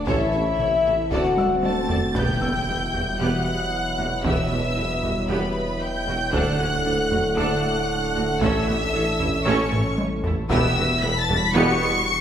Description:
cinematic, hybrid orchestral and electronic film score; 115 BPM; 4/4; straight; E dorian; A4 = 440 Hz
warm symphonic violin section; melody; 0.0-12.2 s; E5 to C#7; -28 LUFS; left 2 dB
mellow French horn section; sustained chords; 0.0-11.7 s; B3 to A4; -26 LUFS; left 2 dB
punchy sub bass; bass; 0.0-12.2 s; D1 to A1; -34 LUFS; equal
felt-muted upright piano; texture; 0.0-12.2 s; C#5 to E6; -39 LUFS; left 1 dB
rich studio violin section; second line; 0.1-12.2 s; F#4 to C#6; -30 LUFS; left 1 dB
clear symphonic viola section; accompaniment; 0.1-11.8 s; G3 to D5; -30 LUFS; right 2 dB
dark trombone section; sustained chords; 0.1-11.7 s; A2 to D4; -32 LUFS; right 2 dB
harp-like synth pluck; arpeggios; 0.1-11.7 s; D3 to A4; -31 LUFS; right 1 dB; chorus
rich symphonic double bass section; bass; 0.1-11.6 s; E1 to D2; -32 LUFS; right 2 dB
warm symphonic cello section; bass; 0.1-11.6 s; D2 to D3; -31 LUFS; right 2 dB
warm tuba; bass; 0.1-11.6 s; E1 to D2; -31 LUFS; right 2 dB
solo taiko drums; drums; 0.1-11.5 s; -29 LUFS; equal
swell and impact; sound effects; 0.8-4.2 s; -33 LUFS; equal
wet recital hall reverb, RT60 1.8 s; recorded in a church or concert hall; -20 LUFS; side -9 dB against mid
0.0-2.2 A section; 2.2-12.2 B section
swell 0.8-2.2; drum fill 1.4-2.2, 9.7-10.5; impact 2.2-4.2
0.1 A; 1.1 D; 2.2 Emadd9; 6.3 D; 8.4 A; 10.5 Emadd9

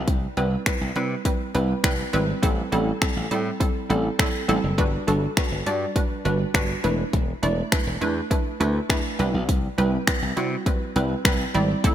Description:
dance-pop; 102 BPM; 4/4; straight; A4 = 437 Hz
hollow square pluck; accompaniment; 0.0-11.9 s; G3 to D5; -25 LUFS; right 2 dB; chorus, sidechain pumping
slap bass; bass; 0.0-11.9 s; E1 to C3; -25 LUFS; equal; sidechain pumping
house drum kit; drums; 0.1-11.9 s; finger snaps, hi-hat, kick drum; -24 LUFS; left 1 dB; gated reverb
light reverb, digital ambience; bright 1980s-style digital production; -21 LUFS; side -11 dB against mid
0.0-11.9 A section
0.0 Cmaj7; 2.4 Am7; 4.8 Gmaj7; 6.8 E7sus4; 9.2 Cmaj7

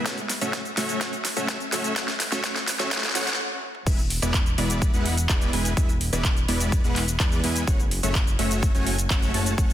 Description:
EDM, festival progressive house; 126 BPM; 4/4; straight; A4 = 436 Hz
dense compressed supersaw; riff; 0.0-9.7 s; G#3 to A5; -27 LUFS; equal; sidechain pumping, dub echo
big-room dance drum kit; drums; 0.1-9.7 s; cabasa, crash cymbal, handclaps, hi-hat, snare drum, toms; -27 LUFS; equal; overdrive, high-pass filter on hats, high-pass filter on snare, high-pass filter on perc, high-pass filter on toms, high-pass filter on cymbals
electronic kick drum; drums; 0.1-9.7 s; -23 LUFS; equal; high-pass filter on kick
fat analog bass; bass; 3.9-9.7 s; E1 to E2; -27 LUFS; equal; sidechain pumping
light reverb; dense, heavily limited modern master, high-pass filter; -21 LUFS; side -12 dB against mid
0.0-3.9 A section; 3.9-9.7 B section
build-up 0.0-3.9; drum fill 0.0-3.4, 3.5-3.9; stop 3.4-3.9; drop 3.9-9.7
0.1 F#m; 3.9 E; 7.7 F#m

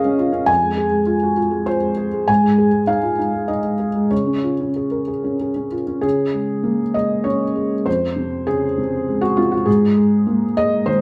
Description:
neoclassical minimalist piano; 93-105 BPM; 3/4; rubato; Db major; A4 = 440 Hz
felt-muted upright piano; solo; 0.0-11.0 s; F2 to Ab5; -19 LUFS; equal
wet large studio reverb, RT60 0.9 s; band playing live in one room; -19 LUFS; mono
0.0-6.0 A section; 6.0-11.0 B section
0.5 Fm; 2.3 Ab5; 4.1 Db; 6.0 Db5; 7.9 Fm; 9.7 Ab5

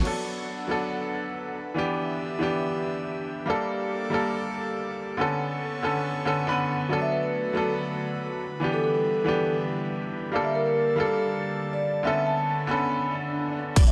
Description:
future bass; 140 BPM; 4/4; half-time; D major; A4 = 440 Hz
bright baby grand piano; accompaniment; 0.0-13.8 s; D3 to B4; -30 LUFS; equal; sidechain pumping, digital delay
airy breathy pad; sustained chords; 0.0-13.7 s; D3 to A5; -36 LUFS; equal; chorus, sidechain pumping
unison pluck; arpeggios; 0.0, 13.8-13.9 s; D5; -47 LUFS; equal
dense compressed supersaw; riff; 0.0, 13.8-13.9 s; B3 to D5; -46 LUFS; equal
saturated sub bass; bass; 0.0, 13.8-13.9 s; D1; -30 LUFS; equal; tube saturation, sidechain pumping
dubstep drum kit; drums; 0.1, 13.8-13.9 s; crash cymbal, hi-hat; -37 LUFS; equal; small room ambience
vibraphone with soft mallets; melody; 7.0-13.9 s; A4 to B5; -30 LUFS; equal; sidechain pumping, dub echo
swell and impact; sound effects; 13.1-13.9 s; -36 LUFS; equal
electronic kick drum; drums; 13.8-13.9 s; -20 LUFS; equal; small room ambience
light reverb; dark, warm production; -27 LUFS; mono
0.1-13.8 A section
swell 13.1-13.8; impact 13.8
0.1 D6; 1.6 Em7; 3.5 Gmadd9; 5.2 Bm9; 6.9 D6; 8.4 Em7; 10.3 Gmadd9; 12.1 Bm9

